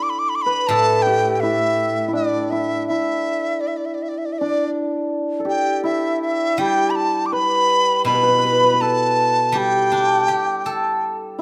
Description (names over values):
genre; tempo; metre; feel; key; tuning
chinese traditional, Chinese chamber ensemble; 81 BPM; 4/4; straight; A shang mode; A4 = 440 Hz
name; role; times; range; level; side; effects
dizi; melody; 0.0-11.4 s; D5 to D6; -22 LUFS; equal; none
hammered dulcimer; second line; 0.0-11.4 s; D4 to B4; -24 LUFS; equal; none
steel-string zither; accompaniment; 0.7-11.4 s; A2 to A4; -27 LUFS; equal; none
room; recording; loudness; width
moderate recital hall reverb, RT60 1.5 s; none; -19 LUFS; mono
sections
0.0-11.4 A section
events
none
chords
none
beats
| 0.69 1.42 2.15 2.88 | 3.61 4.34 5.08 5.84 | 6.58 7.33 8.07 8.81 | 9.55 10.29 11.03